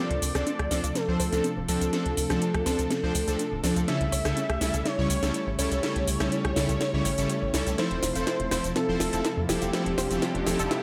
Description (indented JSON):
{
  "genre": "progressive house",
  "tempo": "123 BPM",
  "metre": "4/4",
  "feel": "straight",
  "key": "D minor",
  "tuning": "A4 = 440 Hz",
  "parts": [
    { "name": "unison lead", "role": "melody", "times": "0.0-10.8 s", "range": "G4 to E5", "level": "-34 LUFS", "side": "equal", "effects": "digital delay" },
    { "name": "warm analog pad", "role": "sustained chords", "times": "0.0-10.8 s", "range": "C3 to G4", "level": "-36 LUFS", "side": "equal", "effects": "chorus" },
    { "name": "unison pluck", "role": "arpeggios", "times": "0.0-10.8 s", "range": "C4 to G5", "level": "-39 LUFS", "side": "equal", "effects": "none" },
    { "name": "soft supersaw", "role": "stabs", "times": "0.0-10.6 s", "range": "C#3 to C#5", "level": "-32 LUFS", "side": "equal", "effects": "dub echo" },
    { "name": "tight sequencer bass", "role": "bass", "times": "0.1-10.7 s", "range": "D1 to F2", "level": "-34 LUFS", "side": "equal", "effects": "none" },
    { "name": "house drum kit", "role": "drums", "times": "0.1-10.8 s", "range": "hi-hat, rim click, shaker, snare drum", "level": "-34 LUFS", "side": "equal", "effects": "none" },
    { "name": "riser", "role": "sound effects", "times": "9.4-10.8 s", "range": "none", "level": "-41 LUFS", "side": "equal", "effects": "none" }
  ],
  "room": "moderate digital room reverb, RT60 1.1 s",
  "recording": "none",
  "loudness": "-27 LUFS",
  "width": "mono",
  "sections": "0.0-10.8 A section",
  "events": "build-up 0.0-10.8; drum fill 0.0-10.8",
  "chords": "0.0 Dm7; 3.9 A7; 7.8 Fmaj7",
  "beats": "0.47 0.95 1.44 | 1.93 2.42 2.90 3.39 | 3.88 4.37 4.86 5.34 | 5.83 6.32 6.81 7.30 | 7.78 8.27 8.76 9.25 | 9.73 10.22 10.71"
}